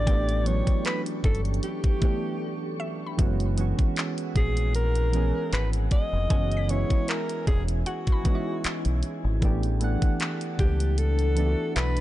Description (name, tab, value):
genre	contemporary R&B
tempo	77 BPM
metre	4/4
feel	swing 54% on 16ths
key	unclear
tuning	A4 = 440 Hz
part	mellow alto saxophone	melody	0.0-12.0 s	F#4 to D#5	-32 LUFS	left 1 dB	tape echo
part	soft electric-piano-like synth keys	accompaniment	0.0-12.0 s	E3 to F#5	-31 LUFS	right 3 dB	chorus, tremolo
part	glassy FM pad	sustained chords	0.0-12.0 s	D4 to C#6	-37 LUFS	left 2 dB	ensemble chorus, built-in reverb
part	deep dub fingered electric bass	bass	0.0-12.0 s	E1 to C#2	-25 LUFS	equal	none
part	trap drum kit	drums	0.1-12.0 s	handclaps, hi-hat, kick drum	-25 LUFS	equal	none
part	mallet-like synth pluck	texture	0.1-12.0 s	E5 to B6	-42 LUFS	left 3 dB	chorus, tape echo
room	little or no reverb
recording	dark, warm production, nothing above 10.3 kHz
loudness	-23 LUFS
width	side -15 dB against mid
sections	0.0-12.0 A section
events	break 2.4-3.2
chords	0.0 A9sus4; 3.2 F#9sus4; 9.4 A9sus4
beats	| 0.07 0.85 1.63 2.41 | 3.19 3.97 4.75 5.52 | 6.30 7.08 7.86 8.64 | 9.42 10.20 10.98 11.76